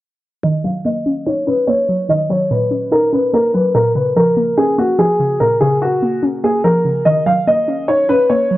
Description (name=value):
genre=hip hop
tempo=145 BPM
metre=4/4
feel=half-time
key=unclear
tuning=A4 = 441 Hz
part: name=dark baby grand piano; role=melody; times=0.4-8.6 s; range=Gb4 to F5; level=-14 LUFS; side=equal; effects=low-pass filter
part: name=warbly dusty pluck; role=accompaniment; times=0.4-8.6 s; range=Bb2 to Eb4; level=-18 LUFS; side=equal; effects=chorus, low-pass filter
room=light reverb, studio ambience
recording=dry, gritty hardware recording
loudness=-13 LUFS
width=side -16 dB against mid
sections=0.4-8.6 A section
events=filter sweep 0.4-8.6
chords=0.4 Ebm7; 3.7 Bbm; 7.1 Ebm7